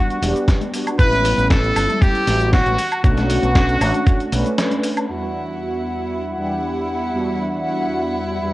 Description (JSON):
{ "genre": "nu-disco, nu disco", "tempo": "117 BPM", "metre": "4/4", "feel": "straight", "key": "E dorian", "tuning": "A4 = 440 Hz", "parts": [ { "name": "clear trumpet section", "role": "melody", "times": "0.0-4.5 s", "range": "F#4 to B4", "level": "-20 LUFS", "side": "equal", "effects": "cassette tape, analog delay" }, { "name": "mellow synth brass", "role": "accompaniment", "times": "0.0-8.5 s", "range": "E2 to F#5", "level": "-22 LUFS", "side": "equal", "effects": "chorus, sidechain pumping, cassette tape, analog delay" }, { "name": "dusty soul sampler-style drum kit", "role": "drums", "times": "0.1-5.1 s", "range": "hi-hat, shaker, snare drum, woodblock", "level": "-25 LUFS", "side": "equal", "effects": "low-pass filter on hats, studio reverb, cassette tape, low-pass filter on perc, low-pass filter on snare" }, { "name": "growling fingered electric bass", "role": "bass", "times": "0.2-4.4 s", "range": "E1 to B1", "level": "-20 LUFS", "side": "equal", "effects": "overdrive" }, { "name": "congas", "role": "percussion", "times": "0.2-4.8 s", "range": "none", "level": "-32 LUFS", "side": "left 6 dB", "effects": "none" }, { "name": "electronic kick drum", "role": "drums", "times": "0.5-4.2 s", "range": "none", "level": "-15 LUFS", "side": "equal", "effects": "studio reverb, cassette tape" }, { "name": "dark chamber string section", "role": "sustained chords", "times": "5.1-8.5 s", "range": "E4 to F#5", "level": "-25 LUFS", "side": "equal", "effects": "sidechain pumping, cassette tape" } ], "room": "light reverb, small room ambience", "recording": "home recording on cassette", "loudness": "-16 LUFS", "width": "side -17 dB against mid", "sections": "0.0-5.1 A section; 5.1-8.5 B section", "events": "break 4.6-5.1; band accent 4.6", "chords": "0.0 Em9 (rootless); 1.0 A9; 2.8 Bm9; 5.1 Em9" }